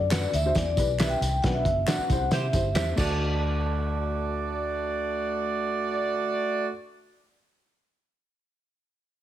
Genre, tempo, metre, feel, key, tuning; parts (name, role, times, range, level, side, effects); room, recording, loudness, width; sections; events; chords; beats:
uptempo 1960s-style soul; 136 BPM; 4/4; straight; D mixolydian; A4 = 440 Hz
vibraphone with soft mallets; melody; 0.0-6.7 s; D5 to A5; -30 LUFS; left 1 dB; slapback echo
dark upright piano; accompaniment; 0.0-6.7 s; D2 to D5; -34 LUFS; left 4 dB
vintage muted fingered electric bass; bass; 0.0-6.7 s; F#1 to C3; -29 LUFS; equal
mellow electric guitar; stabs; 0.1-6.8 s; D4 to F#5; -37 LUFS; right 6 dB; spring reverb
cloth-damped thuddy drum kit; drums; 0.1-3.1 s; crash cymbal, hi-hat, kick drum, snare drum; -28 LUFS; equal
handclaps and tambourine; percussion; 0.1-3.4 s; -37 LUFS; equal
warm horn section; second line; 2.3-6.7 s; A3 to D5; -28 LUFS; right 3 dB
moderate large studio reverb, RT60 1.0 s, small room reverb; heavily compressed radio sound, multiband compression; -24 LUFS; side -12 dB against mid
0.0-3.2 A section; 3.2-6.7 B section
band accent 1.4-3.2
0.0 D; 0.6 Em; 1.4 Bm; 2.1 C; 3.0 D
0.11 0.55 0.99 | 1.43 1.87 2.31 2.75 | 3.19 3.63 4.07 4.51 | 4.96 5.40 5.84 6.28